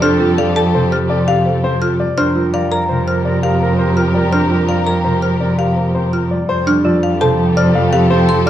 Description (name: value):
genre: classical, minimalist pattern music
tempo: 167 BPM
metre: 6/4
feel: straight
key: F major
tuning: A4 = 440 Hz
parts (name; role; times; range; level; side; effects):
- clear concert grand piano; melody; 0.0-8.5 s; C5 to F5; -22 LUFS; left 4 dB; none
- mellow clarinet; second line; 0.0-8.5 s; A4 to Bb4; -24 LUFS; right 4 dB; none
- concert harp; accompaniment; 0.0-8.5 s; C3 to C4; -20 LUFS; left 2 dB; none
- rich studio string section; sustained chords; 0.0-8.5 s; G4 to Bb4; -24 LUFS; left 3 dB; none
- folk marimba with medium mallets; arpeggios; 0.0-8.5 s; D4 to C5; -20 LUFS; right 3 dB; none
- xylophone with wooden mallets; arpeggios; 0.0-8.5 s; F5 to F6; -22 LUFS; left 4 dB; none
- rich cello; bass; 0.0-8.5 s; F2; -17 LUFS; right 2 dB; none
room: wet stone room reverb, RT60 1.2 s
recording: worn, warbling old tape, cassette tape, warbly pitch drift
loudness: -12 LUFS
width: side -11 dB against mid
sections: 0.0-6.5 A section; 6.5-8.5 B section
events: none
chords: 0.0 Fadd9; 2.2 Gm7/F; 6.5 Fadd9